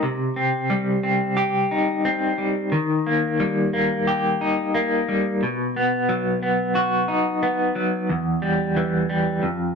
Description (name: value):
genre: rock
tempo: 89 BPM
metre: 4/4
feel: straight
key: unclear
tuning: A4 = 440 Hz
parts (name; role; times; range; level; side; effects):
- clean electric guitar; solo; 0.0-9.8 s; E2 to G4; -20 LUFS; equal; tremolo
room: moderate stone room reverb, RT60 1.0 s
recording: rough rehearsal-room recording, warm saturation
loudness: -20 LUFS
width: side -5 dB against mid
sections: 0.0-9.8 A section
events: none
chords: 0.0 Cm; 2.7 Eb; 5.4 B; 8.1 Em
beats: | 0.03 0.71 1.38 2.06 | 2.73 3.40 4.07 4.75 | 5.42 6.09 6.76 7.43 | 8.10 8.77 9.44